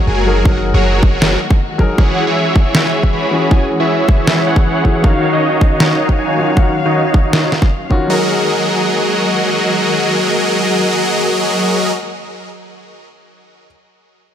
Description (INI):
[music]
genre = future bass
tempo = 157 BPM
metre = 4/4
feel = half-time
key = F# mixolydian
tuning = A4 = 440 Hz
[part]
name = warm grand piano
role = accompaniment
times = 0.0-13.7 s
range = D#3 to E#5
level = -21 LUFS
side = left 2 dB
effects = sidechain pumping, digital delay
[part]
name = dark symphonic string section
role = sustained chords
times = 0.0-11.9 s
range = D#3 to E#5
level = -23 LUFS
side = left 2 dB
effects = vintage 12-bit sampler grit, sidechain pumping
[part]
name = supersaw chords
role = riff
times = 0.0-11.9 s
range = D#3 to B5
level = -15 LUFS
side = equal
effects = sidechain pumping, low-pass filter, digital delay
[part]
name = warm 808-style bass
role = bass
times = 0.0-1.4 s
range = F#1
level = -16 LUFS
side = equal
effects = sidechain pumping
[part]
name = electronic kick drum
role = drums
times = 0.5-8.0 s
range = none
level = -12 LUFS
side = equal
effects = studio reverb
[part]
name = electronic snare drum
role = drums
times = 1.2-7.6 s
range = none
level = -16 LUFS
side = equal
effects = studio reverb
[sound]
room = light reverb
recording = none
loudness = -11 LUFS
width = side -9 dB against mid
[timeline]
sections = 0.0-8.1 A section; 8.1-11.2 B section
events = filter sweep on supersaw synth 0.0-8.1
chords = 0.0 F#69; 2.0 E69; 5.0 D#m9; 8.1 F#69